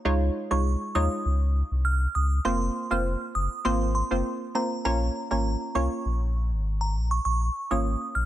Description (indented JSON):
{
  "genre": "dancehall",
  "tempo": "100 BPM",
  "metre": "4/4",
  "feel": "straight",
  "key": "Bb minor",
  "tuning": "A4 = 437 Hz",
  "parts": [
    { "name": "hollow square pluck", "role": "accompaniment", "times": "0.1-7.9 s", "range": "Ab3 to Db5", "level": "-29 LUFS", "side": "right 1 dB", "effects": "chorus" },
    { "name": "warm sub bass", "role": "bass", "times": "0.1-8.3 s", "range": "F1 to Eb2", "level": "-25 LUFS", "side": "equal", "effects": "none" },
    { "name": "glassy synth bell", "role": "melody", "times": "0.5-8.3 s", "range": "Bb5 to F6", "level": "-30 LUFS", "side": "right 2 dB", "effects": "chorus, tremolo, ping-pong delay" }
  ],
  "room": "digital ambience",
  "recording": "none",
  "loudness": "-24 LUFS",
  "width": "side -13 dB against mid",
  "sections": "0.0-4.9 A section; 4.9-8.3 B section",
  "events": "none",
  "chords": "0.1 Dbadd9; 2.5 Fsus4; 4.9 Bbm"
}